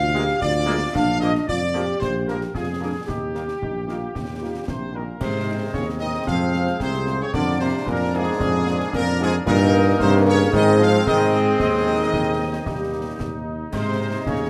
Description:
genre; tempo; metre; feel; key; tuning
military-style march for wind band; 113 BPM; 2/4; straight; Ab major; A4 = 444 Hz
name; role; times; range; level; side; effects
warm trumpet section; melody; 0.0-14.5 s; G4 to F5; -29 LUFS; equal; none
dark woodwind section; second line; 0.0-14.5 s; G4 to F5; -34 LUFS; equal; none
warm euphonium; second line; 0.0-14.5 s; Ab2 to G4; -28 LUFS; equal; none
mellow tuba; bass; 0.0-14.5 s; Bb1 to Ab2; -26 LUFS; equal; none
bright trombone section; sustained chords; 0.1-14.5 s; Eb3 to Eb4; -31 LUFS; equal; none
mellow French horn section; accompaniment; 0.2-14.1 s; G3 to Bb4; -27 LUFS; equal; none
concert snare drum, concert bass drum and clash cymbals; drums; 0.2-14.5 s; none; -34 LUFS; equal; none
room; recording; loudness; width
moderate large studio reverb, RT60 1.3 s; none; -21 LUFS; mono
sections
0.0-5.2 A section; 5.2-14.5 B section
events
none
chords
0.0 Bb7/D; 0.9 Bb7; 3.1 Eb; 5.2 Ab; 6.3 Fm; 7.3 Bb7/F; 9.5 Eb/G; 10.5 Ab; 11.6 Ab/Eb; 12.7 Eb; 13.7 Ab

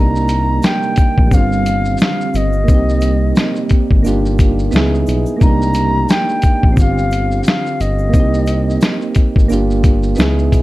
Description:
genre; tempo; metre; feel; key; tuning
lo-fi hip hop; 88 BPM; 4/4; swing 58% on 16ths; C minor; A4 = 440 Hz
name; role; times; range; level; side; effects
mellow silver concert flute; melody; 0.0-9.2 s; Eb5 to Bb5; -20 LUFS; left 1 dB; none
soft electric-piano-like synth keys; accompaniment; 0.0-10.6 s; D3 to Ab4; -18 LUFS; right 2 dB; chorus, tremolo
deep dark ambient pad; sustained chords; 0.7-5.4 s; C3 to Eb4; -25 LUFS; right 2 dB; chorus, built-in reverb
smooth synth bass; bass; 0.0-10.6 s; G1 to Db2; -16 LUFS; equal; none
lo-fi sampler-style drum kit; drums; 0.2-10.6 s; hi-hat, kick drum, shaker, snare drum; -13 LUFS; equal; none
tube shaker; percussion; 0.3-10.6 s; none; -43 LUFS; left 6 dB; none
room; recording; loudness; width
light reverb; dark, warm production; -12 LUFS; side -17 dB against mid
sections
0.0-10.6 A section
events
none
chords
0.0 Cm7; 1.3 G7sus4; 2.7 Cm7; 4.0 Gm7; 4.7 Dbm7; 5.4 Cm7; 6.8 G7sus4; 8.1 Cm7; 9.5 Gm7

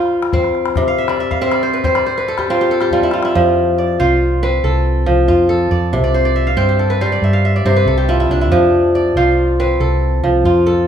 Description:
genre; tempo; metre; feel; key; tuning
west african traditional, West African string and xylophone music; 93 BPM (dotted quarters); 12/8; straight; F lydian; A4 = 440 Hz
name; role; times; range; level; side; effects
kora; arpeggios; 0.0-10.9 s; C3 to G5; -14 LUFS; equal; none
calabash; percussion; 0.0-3.3 s; none; -22 LUFS; left 3 dB; none
hollow-body short-scale fingered electric bass; bass; 3.4-10.9 s; C2 to G2; -16 LUFS; right 1 dB; none
room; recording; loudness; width
wet recital hall reverb, RT60 1.6 s; minimal, uncompressed stereo recording; -12 LUFS; side -8 dB against mid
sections
0.0-3.4 A section; 3.4-10.9 B section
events
kora fill 0.9-3.4, 6.0-8.5; drum fill 2.9-3.4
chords
0.0 F5; 0.8 C5

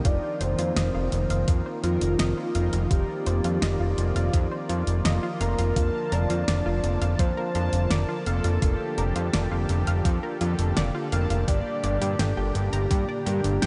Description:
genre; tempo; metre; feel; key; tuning
synthwave; 84 BPM; 4/4; straight; unclear; A4 = 440 Hz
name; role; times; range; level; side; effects
soft octave-layered synth lead; melody; 0.0-13.7 s; F4 to D5; -34 LUFS; equal; chorus, tremolo, delay
brassy analog pad; sustained chords; 0.0-13.7 s; Bb2 to A5; -34 LUFS; equal; chorus, sidechain pumping
analog pluck; arpeggios; 0.0-13.7 s; F4 to Bb5; -37 LUFS; equal; chorus, analog delay
pop drum kit; drums; 0.0-13.7 s; hi-hat, snare drum; -34 LUFS; equal; none
mellow synth brass; stabs; 0.1-13.7 s; Bb3 to A5; -39 LUFS; equal; chorus, analog delay
fat analog bass; bass; 0.1-13.7 s; F1 to G2; -28 LUFS; equal; none
electronic kick drum; drums; 0.1-13.1 s; none; -26 LUFS; equal; overdrive
room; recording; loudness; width
moderate huge ambient reverb, RT60 8.4 s; dreamy mix soaked in reverb, nothing above 10.4 kHz; -25 LUFS; mono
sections
0.0-13.7 A section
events
none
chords
0.1 F7sus4; 5.8 Bbmaj7/F; 11.5 Gm

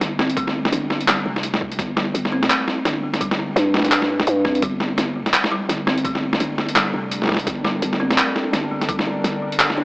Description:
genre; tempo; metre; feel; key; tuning
half-time drum and bass; 169 BPM; 4/4; swing 58% on 16ths, half-time; G minor; A4 = 442 Hz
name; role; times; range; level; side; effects
growling 808-style bass; bass; 0.0-9.8 s; F1 to G2; -24 LUFS; equal; tube saturation
boom bap sampler-style drum kit; drums; 0.0-9.8 s; handclaps, hi-hat, snare drum; -20 LUFS; equal; overdrive
buzzing kalimba; arpeggios; 0.2-9.8 s; D3 to D4; -25 LUFS; equal; tape echo
electronic kick drum; drums; 0.4-9.0 s; none; -31 LUFS; equal; overdrive
bowed-like drone; sustained chords; 5.8-9.8 s; G3 to Bb4; -30 LUFS; left 1 dB; built-in reverb, vintage 12-bit sampler grit, sidechain pumping
room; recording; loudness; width
light reverb, digital ambience; dry, gritty hardware recording, transformer saturation, AM radio sound; -18 LUFS; side -26 dB against mid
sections
0.0-9.8 A section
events
none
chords
0.0 Gmadd9

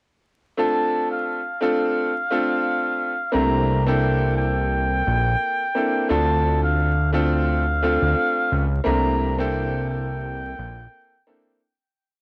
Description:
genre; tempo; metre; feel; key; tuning
hip hop, boom-bap hip-hop; 87 BPM; 4/4; swing 56% on 16ths; D minor; A4 = 441 Hz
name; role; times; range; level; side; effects
trumpet with cup mute; melody; 0.6-11.6 s; F5 to Bb5; -27 LUFS; equal; high-pass filter, low-pass filter
warm grand piano; accompaniment; 0.6-11.6 s; A3 to A4; -26 LUFS; equal; high-pass filter, low-pass filter
fat analog bass; bass; 3.3-10.9 s; Bb1 to D2; -24 LUFS; equal; none
room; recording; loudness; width
little or no reverb; dry, gritty hardware recording, vinyl crackle; -22 LUFS; mono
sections
0.6-11.6 hook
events
fade-out 8.9-11.6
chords
0.6 Dm7; 3.3 C13; 6.1 Dm7; 8.9 C13

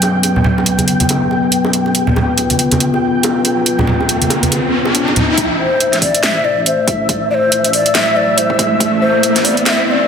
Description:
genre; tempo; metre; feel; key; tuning
deep dubstep; 140 BPM; 4/4; swing 58% on 16ths, half-time; A minor; A4 = 440 Hz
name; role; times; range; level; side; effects
dark analog pad; sustained chords; 0.0-10.1 s; F#3 to C5; -18 LUFS; left 2 dB; chorus
dubstep drum kit; drums; 0.0-9.8 s; hi-hat, snare drum; -16 LUFS; right 2 dB; high-pass filter on hats, high-pass filter on snare
bongos and congas; percussion; 0.0-5.3 s; none; -17 LUFS; right 1 dB; dub echo
flickering grainy texture; texture; 0.0-10.1 s; E5 to G5; -20 LUFS; equal; built-in reverb
riser; sound effects; 3.2-10.1 s; none; -20 LUFS; equal; none
deep soft wobble bass; bass; 5.4-10.1 s; G1 to B1; -28 LUFS; equal; chorus, tube saturation, high-pass filter
electronic kick drum; drums; 5.4-9.5 s; none; -22 LUFS; equal; high-pass filter on kick
breathy mellow ney; melody; 5.6-10.1 s; C5 to F5; -15 LUFS; left 3 dB; dub echo
room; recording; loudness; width
moderate lush hall reverb, RT60 1.8 s, digital ambience; dense, heavily limited modern master, high-pass filter; -11 LUFS; side -7 dB against mid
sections
0.0-5.4 A section; 5.4-10.1 B section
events
filter sweep on analog synth pad 0.0-5.4; riser 3.2-5.4, 5.4-10.1; build-up 5.4-10.1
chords
0.0 B5; 5.4 Am

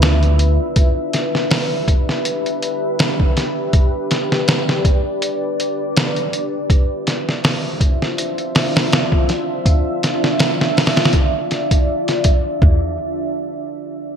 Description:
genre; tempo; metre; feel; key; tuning
trip hop; 81 BPM; 4/4; swing 55% on 16ths; E phrygian; A4 = 440 Hz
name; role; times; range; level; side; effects
deep dark ambient pad; sustained chords; 0.0-13.0 s; D4 to E5; -20 LUFS; equal; chorus, built-in reverb
upright bass; bass; 0.0-0.6, 12.6-13.0 s; D2 to E2; -14 LUFS; equal; none
trip hop sampler-style drum kit; drums; 0.0-12.8 s; hi-hat, kick drum, snare drum; -16 LUFS; equal; gated reverb
room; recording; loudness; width
light reverb, digital ambience; bright 1980s-style digital production; -15 LUFS; side -8 dB against mid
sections
0.0-12.6 A section; 12.6-14.2 B section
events
none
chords
0.0 Dmadd9; 0.8 Em7; 6.7 Dm9; 12.6 Em7

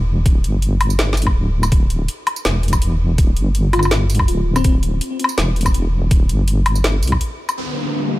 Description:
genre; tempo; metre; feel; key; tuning
half-time drum and bass; 164 BPM; 4/4; half-time; D minor; A4 = 441 Hz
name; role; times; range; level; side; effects
deep soft wobble bass; bass; 0.0-7.2 s; D1 to C2; -17 LUFS; equal; chorus
drum and bass drum kit; drums; 0.3-8.2 s; hi-hat, snare drum, tambourine, woodblock; -22 LUFS; left 1 dB; overdrive, low-pass filter on hats, studio reverb, low-pass filter on perc, low-pass filter on snare
electronic kick drum; drums; 0.3-7.2 s; none; -16 LUFS; equal; overdrive, studio reverb
bell-like FM electric piano; melody; 3.7-4.7 s; C4 to F4; -26 LUFS; left 3 dB; chorus, digital delay
dark analog pad; sustained chords; 7.6-8.2 s; D4 to F5; -23 LUFS; right 1 dB; chorus, vintage 12-bit sampler grit, sidechain pumping
downlifter; sound effects; 7.6-8.2 s; none; -21 LUFS; left 2 dB; none
room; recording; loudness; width
digital ambience; none; -15 LUFS; side -17 dB against mid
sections
0.0-7.6 A section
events
break 7.2-7.6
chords
0.0 Dsus2; 7.6 Dm

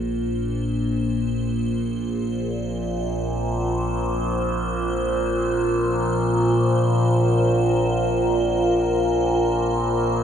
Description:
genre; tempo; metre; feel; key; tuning
dark ambient drone; free time; none; none; unclear; A4 = 440 Hz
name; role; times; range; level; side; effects
dark analog pad; sustained chords; 0.2-10.2 s; F4 to C5; -24 LUFS; right 1 dB; chorus, phaser
overtone-sweeping drone; drone; 0.0-10.2 s; Bb1 to Bb2; -22 LUFS; left 1 dB; chorus, built-in reverb
icy glass pad; texture; 0.1-10.2 s; C5; -35 LUFS; right 3 dB; chorus, built-in reverb
room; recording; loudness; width
wet cathedral reverb, RT60 5.5 s; none; -20 LUFS; side -8 dB against mid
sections
0.0-10.2 A section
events
fade-in on ambient pad 0.0-10.2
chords
0.0 Bbsus2

